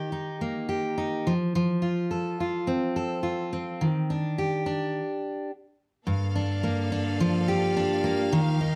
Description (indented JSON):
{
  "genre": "acoustic pop",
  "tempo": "106 BPM",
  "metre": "4/4",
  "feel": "straight",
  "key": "G minor",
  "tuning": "A4 = 440 Hz",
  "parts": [
    { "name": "fingerpicked steel-string acoustic guitar", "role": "accompaniment", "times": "0.0-8.8 s", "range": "G2 to A4", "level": "-27 LUFS", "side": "equal", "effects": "none" },
    { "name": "clear studio string section", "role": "sustained chords", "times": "6.1-8.8 s", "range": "Eb2 to F5", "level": "-38 LUFS", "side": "equal", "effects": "none" }
  ],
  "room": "light reverb",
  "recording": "close, detailed microphones",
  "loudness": "-27 LUFS",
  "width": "mono",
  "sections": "0.0-6.1 A section; 6.1-8.8 B section",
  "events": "stop 4.9-6.1",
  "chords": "0.0 Eb; 1.3 F; 3.8 Ebmaj7; 6.1 Gm7"
}